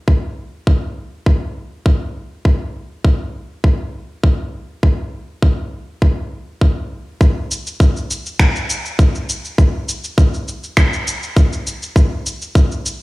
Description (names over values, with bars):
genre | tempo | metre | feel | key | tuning
downtempo | 101 BPM | 4/4 | straight | none | none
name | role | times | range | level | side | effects
electronic kick drum | drums | 0.1-12.7 s | none | -14 LUFS | equal | studio reverb
electronic shaker and finger snaps | drums | 7.2-13.0 s | none | -21 LUFS | equal | overdrive, low-pass filter on perc, studio reverb, low-pass filter on snare
room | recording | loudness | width
digital ambience | played on a big sound system in a bare room, large studio reverb | -15 LUFS | side -20 dB against mid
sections
0.0-7.2 A section; 7.2-13.0 B section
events
none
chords
none